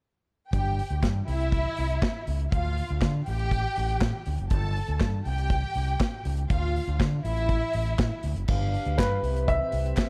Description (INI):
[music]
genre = disco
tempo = 121 BPM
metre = 4/4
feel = straight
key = unclear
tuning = A4 = 440 Hz
[part]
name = rich studio string section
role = second line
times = 0.5-8.2 s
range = E4 to A5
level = -34 LUFS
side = equal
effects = none
[part]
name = overdriven fingered electric bass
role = bass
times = 0.5-9.9 s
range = F#1 to D3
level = -30 LUFS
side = equal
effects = none
[part]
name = modern studio drum kit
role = drums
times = 0.5-10.1 s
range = crash cymbal, handclaps, hi-hat, kick drum, snare drum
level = -31 LUFS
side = equal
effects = none
[part]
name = mellow large flute ensemble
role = sustained chords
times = 8.5-10.1 s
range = C4 to F5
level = -36 LUFS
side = equal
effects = none
[part]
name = warm baby grand piano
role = melody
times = 9.0-10.1 s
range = B4 to E5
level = -30 LUFS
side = equal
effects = none
[part]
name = group handclap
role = percussion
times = 9.0-10.1 s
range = none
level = -44 LUFS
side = equal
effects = none
[sound]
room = light reverb, small room ambience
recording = none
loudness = -27 LUFS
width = mono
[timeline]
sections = 0.5-8.5 A section; 8.5-10.1 B section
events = none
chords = 0.5 G5; 1.3 C; 2.5 Dm; 3.3 Dsus4 (rootless); 4.5 G5; 5.3 C5; 6.5 Dm; 7.2 A5; 8.5 G7; 9.2 Cmaj7